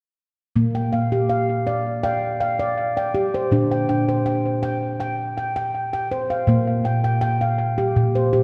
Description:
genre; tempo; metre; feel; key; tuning
world meditative; 81 BPM; 4/4; straight; Bb major pentatonic; A4 = 438 Hz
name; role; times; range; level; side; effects
handpan; arpeggios; 0.6-8.4 s; Bb2 to G5; -21 LUFS; equal; analog delay
room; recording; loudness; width
wet echo chamber reverb, RT60 2.4 s; echo-heavy mix; -22 LUFS; mono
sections
0.6-6.5 A section; 6.5-8.4 B section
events
none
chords
0.6 Bbsus2

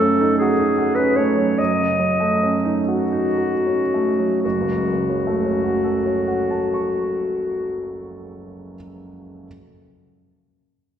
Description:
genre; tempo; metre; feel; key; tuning
classical, impressionist duo for clarinet and grand piano; 35-52 BPM (dotted quarters); 6/8; rubato; F# minor; A4 = 440 Hz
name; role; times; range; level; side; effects
clear clarinet; melody; 0.0-8.0 s; F#4 to D#5; -21 LUFS; left 3 dB; none
clear baby grand piano; accompaniment; 0.0-9.5 s; F#1 to C#6; -21 LUFS; right 3 dB; none
room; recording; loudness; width
wet concert hall reverb, RT60 1.9 s; heard from further back in the room; -18 LUFS; side -9 dB against mid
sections
0.0-4.4 A section; 4.4-7.3 B section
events
slowing down 0.0-4.4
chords
0.0 F#m6; 4.4 F#m

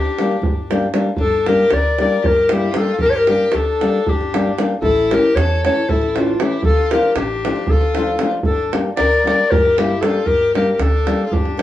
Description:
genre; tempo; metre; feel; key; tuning
balkan folk, Balkan wedding band; 231 BPM (eighths); 7/8; straight; G dorian sharp4; A4 = 440 Hz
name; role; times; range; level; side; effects
mellow clarinet; melody; 0.0-11.6 s; F4 to D5; -17 LUFS; left 2 dB; none
bright violin; second line; 0.0-11.6 s; D4 to Bb4; -26 LUFS; left 3 dB; none
upright bass; bass; 0.0-11.6 s; G1 to E2; -23 LUFS; right 1 dB; none
davul; percussion; 0.1-11.6 s; none; -21 LUFS; right 2 dB; none
flamenco guitar; accompaniment; 0.2-11.6 s; E3 to G4; -20 LUFS; left 2 dB; none
room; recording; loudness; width
moderate studio reverb, RT60 0.6 s; band playing live in one room, small room ambience, faint mains hum; -14 LUFS; side -13 dB against mid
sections
0.0-1.2 A section; 1.2-11.6 B section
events
none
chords
0.0 Gm; 4.8 A; 6.6 Dm; 8.4 Gm

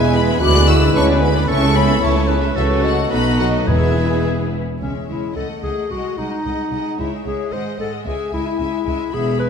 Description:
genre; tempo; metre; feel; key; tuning
quick classical-period movement for symphony orchestra; 112 BPM; 2/4; rubato; E major, C# minor from 4.8 s; A4 = 440 Hz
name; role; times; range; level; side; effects
warm studio violin section; melody; 0.0-9.5 s; E5 to F#6; -26 LUFS; left 4 dB; none
clear oboe; second line; 0.0-4.5 s; F#4 to C#5; -27 LUFS; equal; none
large flute ensemble; second line; 0.0-4.2 s; B4 to D6; -26 LUFS; left 2 dB; none
rich chamber violin section; second line; 0.0-9.5 s; G#4 to E5; -27 LUFS; left 2 dB; none
warm clarinet; second line; 0.0-9.5 s; C#4 to B#4; -24 LUFS; left 4 dB; none
dark bassoon; accompaniment; 0.0-4.5 s; G#3 to A3; -26 LUFS; right 2 dB; none
rich chamber viola section; accompaniment; 0.0-9.5 s; G#3 to G#4; -26 LUFS; left 1 dB; none
dark French horn section; sustained chords; 0.0-4.2 s; E3 to F#4; -22 LUFS; left 1 dB; none
rich symphonic cello section; bass; 0.0-9.5 s; B#1 to D3; -24 LUFS; right 2 dB; none
warm symphonic double bass section; bass; 0.0-9.5 s; E1 to D2; -21 LUFS; right 2 dB; none
timpani; percussion; 0.0-0.1, 3.7-4.5 s; E2; -23 LUFS; left 2 dB; none
room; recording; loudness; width
wet scoring stage reverb, RT60 1.9 s; minimal, uncompressed stereo recording; -15 LUFS; side -6 dB against mid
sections
0.0-4.8 A section; 4.8-9.5 B section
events
none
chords
0.4 E7/D; 1.5 A/C#; 2.6 F#m7/C#; 3.1 B7; 3.7 E; 4.8 C#m; 5.4 D#m7b5/C#; 5.9 G#7/B#; 7.0 C#m; 7.5 G#7; 8.1 C#m

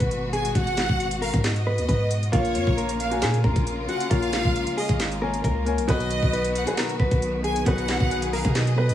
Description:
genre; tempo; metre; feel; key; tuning
hip hop, trap; 135 BPM; 4/4; half-time; Bb phrygian; A4 = 440 Hz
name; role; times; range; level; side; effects
mellow electric guitar; melody; 0.0-8.9 s; F4 to Cb5; -28 LUFS; left 2 dB; tape echo
warm symphonic string section; sustained chords; 0.0-8.9 s; Cb3 to Ab4; -32 LUFS; left 2 dB; none
long sustained 808-style bass; bass; 0.0-8.9 s; Ab1 to B2; -27 LUFS; equal; none
trap drum kit; drums; 0.0-8.9 s; handclaps, hi-hat, kick drum, snare drum; -26 LUFS; equal; none
rich studio violin section; second line; 0.3-8.9 s; Db5 to Ab5; -30 LUFS; right 2 dB; tape echo
dark baby grand piano; accompaniment; 2.3-8.9 s; B2 to Ab5; -29 LUFS; left 1 dB; none
room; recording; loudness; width
studio reverb; small room ambience; -21 LUFS; side -11 dB against mid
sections
0.0-8.9 A section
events
none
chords
0.0 Abm7; 2.3 Bbm; 5.9 B

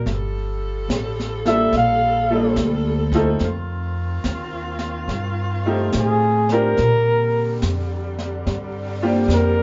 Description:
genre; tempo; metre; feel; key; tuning
jazz ballad; 72 BPM; 4/4; swing 66% on 8ths; F major; A4 = 440 Hz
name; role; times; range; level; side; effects
trumpet with bucket mute; melody; 0.0-9.6 s; Ab4 to F5; -21 LUFS; equal; none
bright upright piano; accompaniment; 0.0-9.6 s; G3 to Bb4; -23 LUFS; equal; none
upright bass; bass; 0.0-9.6 s; G1 to Bb2; -26 LUFS; equal; none
bright saxophone section; sustained chords; 0.1-9.6 s; C3 to A4; -32 LUFS; equal; none
jazz brush drum kit; drums; 0.1-9.6 s; brushed snare drum, hi-hat, kick drum, snare drum; -31 LUFS; equal; none
room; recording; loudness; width
wet club reverb, RT60 0.6 s; heard from further back in the room, nothing above 7.6 kHz; -21 LUFS; mono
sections
0.0-9.6 A section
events
muted trumpet solo 0.0-9.6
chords
0.1 Gm9; 3.4 F7; 6.8 Bb69

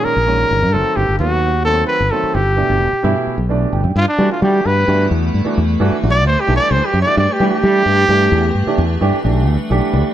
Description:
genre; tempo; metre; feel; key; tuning
jazz; 261 BPM (eighths); 7/8; straight; G major; A4 = 440 Hz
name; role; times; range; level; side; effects
clear trumpet; melody; 0.0-8.8 s; D4 to D5; -17 LUFS; equal; tape echo
warm baby grand piano; accompaniment; 0.0-10.1 s; Bb2 to G5; -21 LUFS; right 4 dB; none
fretless electric bass; bass; 0.1-10.0 s; E1 to G3; -16 LUFS; equal; none
icy glass pad; sustained chords; 4.4-10.1 s; D3 to F#5; -23 LUFS; left 1 dB; chorus, built-in reverb
room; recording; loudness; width
light reverb; dark, warm production; -13 LUFS; side -11 dB against mid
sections
0.0-4.0 A section; 4.0-10.1 B section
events
grand piano fill 3.3-4.0, 9.7-10.1; trumpet solo 4.0-10.1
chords
0.0 Ebadd11; 0.7 B7b9/G; 2.3 G69; 5.6 Em11; 7.2 G69; 8.8 Em11

